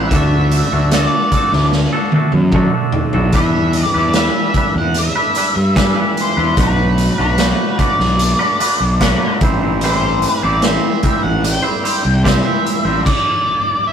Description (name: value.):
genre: psychedelic rock.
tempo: 74 BPM.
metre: 4/4.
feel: straight.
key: unclear.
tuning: A4 = 437 Hz.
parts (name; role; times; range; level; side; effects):
octave-fuzz lead guitar; melody; 0.0-13.9 s; B4 to G5; -19 LUFS; equal; distortion.
twangy electric guitar; riff; 0.0-13.0 s; A2 to C5; -19 LUFS; equal; none.
fuzz fingered electric bass; bass; 0.0-13.0 s; A1 to G2; -16 LUFS; equal; overdrive.
raw garage drum kit; drums; 0.1-13.2 s; crash cymbal, hi-hat, kick drum, snare drum, toms; -17 LUFS; equal; none.
room: moderate studio reverb, RT60 0.6 s.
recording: rough rehearsal-room recording, warm saturation.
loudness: -12 LUFS.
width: side -8 dB against mid.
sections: 0.0-13.9 A section.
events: drum fill 1.7-3.3.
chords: 0.1 D; 3.3 Em7; 6.6 Bm7; 9.4 Am7; 13.1 N.C..